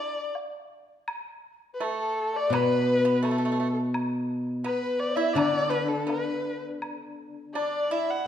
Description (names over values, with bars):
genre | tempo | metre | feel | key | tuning
chinese traditional, Chinese chamber ensemble | 83 BPM | 2/4 | rubato | unclear | A4 = 440 Hz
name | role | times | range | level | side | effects
warm erhu | melody | 0.0-8.3 s | A4 to F#5 | -29 LUFS | left 1 dB | none
mellow hollow dizi | second line | 0.0-8.3 s | A4 to F#5 | -32 LUFS | left 4 dB | none
pipa | second line | 0.0-8.2 s | A3 to E4 | -33 LUFS | right 6 dB | none
woodblock | percussion | 0.3-7.7 s | none | -38 LUFS | left 1 dB | none
steel-string zither | accompaniment | 2.5-7.5 s | B2 to D3 | -27 LUFS | left 2 dB | none
room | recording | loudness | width
wet recital hall reverb, RT60 1.5 s | dark, warm production | -24 LUFS | side -10 dB against mid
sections
0.0-1.1 A section; 1.1-8.3 B section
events
none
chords
none